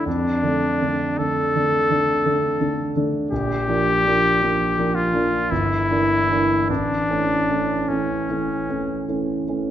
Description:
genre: classical, romantic duo for trumpet and grand piano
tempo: 50-57 BPM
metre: 3/4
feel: rubato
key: unclear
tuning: A4 = 439 Hz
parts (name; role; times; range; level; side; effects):
- clear trumpet; melody; 0.0-9.1 s; C#4 to A4; -20 LUFS; left 1 dB; none
- warm concert grand piano; accompaniment; 0.0-9.7 s; G1 to D4; -22 LUFS; right 1 dB; none
room: wet recital hall reverb, RT60 1.4 s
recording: nothing above 7.6 kHz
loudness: -18 LUFS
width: side -10 dB against mid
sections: 0.0-9.7 A section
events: none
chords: 0.1 Dm/F; 3.3 Bb; 5.5 Em7b5/G; 6.7 A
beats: | 0.06 1.19 2.25 | 3.31 4.39 5.50 | 6.69 7.88 9.07

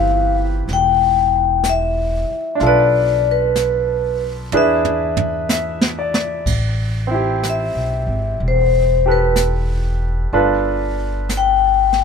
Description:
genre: jazz ballad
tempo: 62 BPM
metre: 4/4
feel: swing 68% on 8ths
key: A minor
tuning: A4 = 437 Hz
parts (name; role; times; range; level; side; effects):
- vibraphone with medium hard mallets; melody; 0.0-12.0 s; B4 to G5; -17 LUFS; left 5 dB; none
- bright grand piano; accompaniment; 0.0-12.0 s; E3 to E5; -21 LUFS; right 2 dB; none
- upright bass; bass; 0.0-12.0 s; E1 to E2; -21 LUFS; equal; none
- jazz brush drum kit; drums; 0.7-12.0 s; brushed snare drum, hi-hat, kick drum, ride cymbal, snare drum, toms; -22 LUFS; right 2 dB; none
room: little or no reverb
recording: minimal, uncompressed stereo recording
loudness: -15 LUFS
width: side -6 dB against mid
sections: 0.0-6.5 A section; 6.5-12.0 B section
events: drum fill 4.5-6.5; vibraphone solo 6.5-12.0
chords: 0.0 Am9 (rootless); 2.6 Bm7b5; 4.5 E7; 6.5 Am9; 10.3 G7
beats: 0.68 1.64 | 2.60 3.56 4.52 5.49 | 6.46 7.43 8.39 9.36 | 10.32 11.29

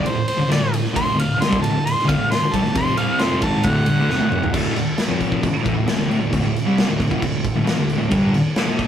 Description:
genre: garage rock duo or trio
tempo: 134 BPM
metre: 4/4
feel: straight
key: unclear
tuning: A4 = 439 Hz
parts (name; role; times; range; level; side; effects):
- bright harmonica; melody; 0.0-4.5 s; C5 to C6; -23 LUFS; equal; overdrive
- thick fuzz guitar; riff; 0.0-8.9 s; D2 to C4; -19 LUFS; equal; distortion
- raw garage drum kit; drums; 0.1-8.9 s; crash cymbal, kick drum, ride cymbal, snare drum, toms; -22 LUFS; equal; none
room: moderate studio reverb, RT60 0.6 s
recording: rough rehearsal-room recording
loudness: -17 LUFS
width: side -9 dB against mid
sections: 0.0-4.5 A section; 4.5-8.9 B section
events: harmonica solo 0.0-4.5; drum fill 4.1-4.5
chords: 0.0 D5; 8.1 G5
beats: 0.07 0.52 | 0.96 1.41 1.86 2.30 | 2.75 3.19 3.64 4.09 | 4.53 4.98 5.43 5.87 | 6.32 6.77 7.22 7.67 | 8.12 8.57

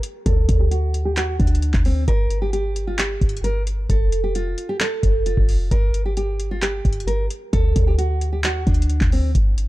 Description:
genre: hip hop, trap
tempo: 132 BPM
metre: 4/4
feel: half-time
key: G minor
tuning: A4 = 445 Hz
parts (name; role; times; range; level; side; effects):
- booming analog drum machine; drums; 0.0-9.7 s; handclaps, hi-hat, kick drum; -20 LUFS; equal; none
- nylon-string guitar; melody; 0.3-9.3 s; C4 to Bb4; -26 LUFS; right 2 dB; low-pass filter
- clean 808-style bass; bass; 0.3-9.7 s; F1 to Eb2; -21 LUFS; equal; none
room: little or no reverb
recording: dark, warm production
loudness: -18 LUFS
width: side -17 dB against mid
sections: 0.0-9.7 A section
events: filter sweep on nylon-string guitar 0.0-2.1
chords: 0.3 D; 2.1 Gm; 3.9 F; 5.7 Gm; 7.5 D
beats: | 0.26 0.71 1.17 1.62 | 2.08 2.53 2.99 3.44 | 3.90 4.35 4.80 5.26 | 5.71 6.17 6.62 7.08 | 7.53 7.99 8.44 8.89 | 9.35

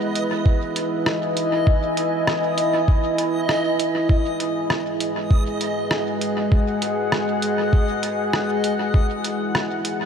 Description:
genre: ambient dub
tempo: 99 BPM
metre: 4/4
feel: swing 53% on 16ths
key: G# minor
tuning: A4 = 440 Hz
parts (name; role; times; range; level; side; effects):
- deep dark ambient pad; sustained chords; 0.0-10.1 s; G#3 to G#5; -22 LUFS; equal; chorus, built-in reverb
- backwards swelling texture; texture; 0.0-10.1 s; D#5; -30 LUFS; right 1 dB; built-in reverb
- lo-fi sampler-style drum kit; drums; 0.2-10.0 s; hi-hat, rim click; -27 LUFS; equal; dub echo
- electronic kick drum; drums; 0.5-9.1 s; none; -17 LUFS; equal; none
room: moderate huge ambient reverb, RT60 6.7 s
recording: none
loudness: -19 LUFS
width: side -7 dB against mid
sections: 0.0-10.1 A section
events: none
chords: 0.0 Emaj7; 4.1 G#m7; 8.9 Emaj7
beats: 0.46 1.06 | 1.67 2.27 2.88 3.49 | 4.09 4.70 5.30 5.91 | 6.52 7.12 7.73 8.34 | 8.94 9.55

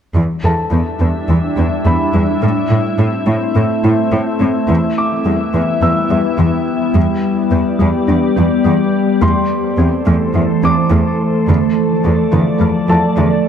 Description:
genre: cinematic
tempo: 106 BPM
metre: 4/4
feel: straight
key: E phrygian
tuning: A4 = 440 Hz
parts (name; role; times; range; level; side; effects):
- glassy FM pad; sustained chords; 0.7-13.5 s; E3 to E5; -15 LUFS; left 1 dB; ensemble chorus, built-in reverb
- thumb-piano-like synth pluck; arpeggios; 0.2-13.4 s; D3 to E4; -20 LUFS; left 2 dB; chorus, tape echo
- rich symphonic cello section; bass; 0.2-13.3 s; E2 to A2; -16 LUFS; right 1 dB; none
- warm grand piano; texture; 0.4-13.5 s; A4 to E6; -22 LUFS; equal; tape echo
room: moderate scoring stage reverb, RT60 1.5 s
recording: close, detailed microphones, high-pass filter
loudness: -12 LUFS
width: side -8 dB against mid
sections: 0.2-4.7 A section; 4.7-13.5 B section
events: build-up 4.7-13.5; filter sweep 4.7-13.5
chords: 0.2 Em7; 2.4 Am; 4.7 Em; 9.2 Am/E; 11.5 Dm/E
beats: | 0.16 0.73 1.30 1.86 | 2.43 2.99 3.56 4.13 | 4.69 5.26 5.82 6.39 | 6.96 7.52 8.09 8.65 | 9.22 9.79 10.35 10.92 | 11.48 12.05 12.62 13.18

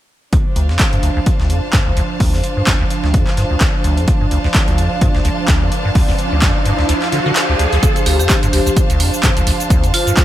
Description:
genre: acid house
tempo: 128 BPM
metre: 4/4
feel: swing 56% on 16ths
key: D minor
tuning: A4 = 440 Hz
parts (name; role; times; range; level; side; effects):
- warm analog pad; sustained chords; 0.3-10.2 s; F3 to D5; -24 LUFS; right 2 dB; chorus, sidechain pumping
- acid bass, square; riff; 0.3-10.2 s; D2 to D3; -18 LUFS; equal; tube saturation, wide subtle chorus
- breakbeat sampler-style drum kit; drums; 0.3-7.8 s; hi-hat, snare drum; -27 LUFS; equal; overdrive, sidechain pumping on hats, high-pass filter on hats, high-pass filter on snare, high-pass filter on room
- electronic kick drum; drums; 0.3-10.2 s; none; -16 LUFS; equal; overdrive
- clear studio string section; texture; 0.3-10.2 s; D4 to A5; -23 LUFS; right 1 dB; sidechain pumping
- punchy analog drum machine; drums; 0.8-10.2 s; handclaps, hi-hat, shaker; -21 LUFS; right 1 dB; overdrive
- riser; sound effects; 5.2-7.8 s; none; -23 LUFS; right 1 dB; none
- vibraphone with hard mallets; melody; 8.1-10.2 s; F4 to G4; -21 LUFS; left 3 dB; vintage 12-bit sampler grit, ping-pong delay
room: light reverb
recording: none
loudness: -12 LUFS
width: side -13 dB against mid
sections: 0.3-7.8 A section; 7.8-10.2 B section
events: filter sweep on acid bass 0.3-7.8; riser 5.2-7.8; kick drops out 6.9-7.8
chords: 0.3 Dm7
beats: | 0.33 0.80 1.26 1.73 | 2.20 2.67 3.14 3.61 | 4.08 4.55 5.01 5.48 | 5.95 6.42 6.89 7.36 | 7.83 8.30 8.77 9.23 | 9.70 10.17

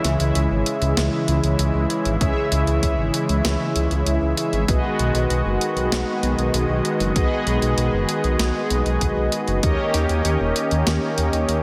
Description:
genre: synthwave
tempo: 97 BPM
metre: 4/4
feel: straight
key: G# minor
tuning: A4 = 440 Hz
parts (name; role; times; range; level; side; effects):
- brassy analog pad; sustained chords; 0.0-11.6 s; C#3 to G#4; -26 LUFS; equal; chorus, sidechain pumping
- mellow synth brass; stabs; 0.0-11.6 s; E4 to E5; -27 LUFS; equal; chorus, tape echo
- detuned saw bass; bass; 0.0-11.6 s; D#1 to D#2; -24 LUFS; equal; chorus
- clean 12-bit digital drum machine; drums; 0.0-11.6 s; hi-hat, snare drum; -29 LUFS; equal; overdrive
- electronic kick drum; drums; 2.2-9.8 s; none; -25 LUFS; equal; overdrive
room: moderate lush hall reverb, RT60 1.7 s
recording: dreamy mix soaked in reverb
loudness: -21 LUFS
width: mono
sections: 0.0-11.6 A section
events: none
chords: 0.0 C#m; 4.7 G#m7; 9.6 D#7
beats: 0.35 0.97 1.59 | 2.21 2.83 3.45 4.07 | 4.68 5.30 5.92 6.54 | 7.16 7.78 8.39 9.01 | 9.63 10.25 10.87 11.49

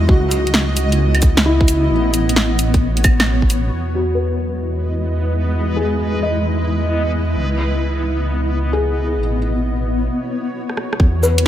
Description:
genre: future garage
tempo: 132 BPM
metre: 4/4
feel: swing 67% on 16ths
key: unclear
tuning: A4 = 440 Hz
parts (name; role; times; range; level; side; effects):
- felt-muted upright piano; accompaniment; 0.0-11.5 s; E4 to D#5; -22 LUFS; left 2 dB; sidechain pumping, low-pass filter, digital delay
- granular cloud pad; sustained chords; 0.0-11.5 s; G#3 to D#5; -22 LUFS; equal; built-in reverb, sidechain pumping
- dark detuned saw bass; bass; 0.0-11.5 s; A1 to E2; -18 LUFS; equal; sidechain pumping
- electronic kick drum; drums; 0.1-3.5, 11.0-11.1 s; none; -14 LUFS; equal; studio reverb
- garage drum kit; drums; 0.3-3.6, 10.7-11.4 s; cabasa, claves, hi-hat, rim click, snare drum; -18 LUFS; right 1 dB; studio reverb
- backwards swelling texture; texture; 4.8-11.5 s; B3 to E5; -29 LUFS; left 2 dB; built-in reverb
room: light reverb, digital ambience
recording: none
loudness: -15 LUFS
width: side -11 dB against mid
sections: 0.0-3.7 A section; 3.7-11.0 B section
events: filter sweep on felt piano 3.7-11.0; break 10.1-11.0; drum fill 10.7-11.0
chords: 0.1 C#m9; 1.9 A69; 3.7 Emaj7; 7.4 C#m9; 9.2 A69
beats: | 0.09 0.55 1.00 1.46 | 1.91 2.36 2.82 3.27 | 3.73 4.18 4.64 5.09 | 5.54 6.00 6.46 6.91 | 7.36 7.82 8.27 8.73 | 9.18 9.64 10.09 10.54 | 11.00 11.46

